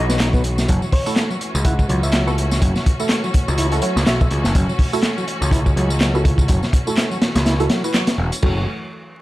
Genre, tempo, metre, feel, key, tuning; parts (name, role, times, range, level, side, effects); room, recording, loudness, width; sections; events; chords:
breakbeat, breaks; 124 BPM; 4/4; swing 57% on 16ths; F# minor; A4 = 439 Hz
clear studio string section; sustained chords; 0.0-8.7 s; E3 to F#4; -27 LUFS; left 1 dB; sidechain pumping
filtered dub chord stab; stabs; 0.0-8.6 s; E4 to D#5; -26 LUFS; right 2 dB; phaser, analog chorus, dub echo
overdriven picked electric bass; bass; 0.0-8.7 s; E1 to C#2; -19 LUFS; equal; tube saturation
combo organ; riff; 0.1-8.7 s; F#3 to E4; -26 LUFS; equal; dub echo
crunchy breakbeat drum kit; drums; 0.1-8.5 s; crash cymbal, hi-hat, kick drum, snare drum; -19 LUFS; equal
electronic tambourine and handclaps; drums; 0.1-8.4 s; -28 LUFS; equal
bell-like FM electric piano; melody; 0.9-4.3 s; C#5 to F#5; -30 LUFS; equal; chorus, tremolo, telephone sound, dub echo
little or no reverb; vinyl crackle; -16 LUFS; side -17 dB against mid
0.0-8.4 A section
drop 0.0-8.4; band accent 7.9
0.0 Bsus4; 0.7 F#m7